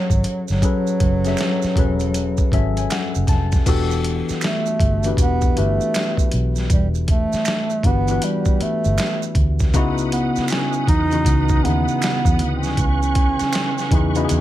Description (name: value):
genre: R&B, neo-soul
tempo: 79 BPM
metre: 4/4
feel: swing 63% on 16ths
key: unclear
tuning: A4 = 436 Hz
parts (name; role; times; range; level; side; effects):
- mellow bass clarinet; melody; 0.0-14.4 s; F#3 to D#4; -23 LUFS; right 3 dB; plate reverb
- tine electric piano; accompaniment; 0.0-14.4 s; C#3 to A5; -23 LUFS; left 5 dB; lush chorus, plate reverb
- vintage muted fingered electric bass; bass; 0.1-14.4 s; E1 to E2; -20 LUFS; equal; none
- boom bap sampler-style drum kit; drums; 0.1-14.4 s; crash cymbal, hi-hat, kick drum, snare drum; -21 LUFS; equal; none
- maracas and finger snaps; percussion; 0.1-14.4 s; none; -32 LUFS; right 8 dB; none
- bright tonewheel organ; sustained chords; 9.7-14.4 s; B4 to D#6; -31 LUFS; equal; chorus vibrato, fast rotary speaker
room: light reverb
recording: none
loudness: -16 LUFS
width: side -13 dB against mid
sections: 0.0-3.7 A section; 3.7-14.4 B section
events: tine electric piano fill 2.1-3.7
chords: 0.0 F#m9; 3.7 Em11; 9.7 C#m11